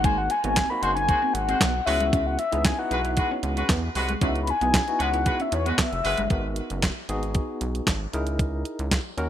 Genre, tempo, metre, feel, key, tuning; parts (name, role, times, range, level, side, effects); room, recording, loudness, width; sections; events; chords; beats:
early-eighties boogie funk; 115 BPM; 4/4; straight; C# dorian; A4 = 440 Hz
mellow horn-like synth lead; melody; 0.0-6.3 s; C#5 to B#5; -26 LUFS; left 3 dB; chorus, digital delay
barky tine electric piano; accompaniment; 0.0-9.3 s; A#3 to A#4; -32 LUFS; equal; overdrive, fast tremolo
electric guitar at the edge of break-up; riff; 0.0-6.3 s; G#3 to E4; -33 LUFS; right 4 dB; analog chorus
rubbery square bass; bass; 0.0-9.3 s; E#1 to E2; -28 LUFS; equal
clean 12-bit digital drum machine; drums; 0.0-9.3 s; handclaps, hi-hat, kick drum, snare drum; -25 LUFS; right 1 dB
clear horn section; second line; 0.8-6.2 s; G#3 to B#4; -31 LUFS; equal; digital delay
light reverb, digital ambience; bright 1980s-style digital production; -22 LUFS; side -10 dB against mid
0.0-6.3 A section; 6.3-9.3 B section
soft synth lead solo 0.0-6.3
0.0 G#7; 1.9 C#m11; 6.3 G#m9; 8.1 C#m69
| 0.04 0.56 1.09 1.61 | 2.13 2.65 3.17 3.70 | 4.22 4.74 5.26 5.78 | 6.30 6.83 7.35 7.87 | 8.39 8.91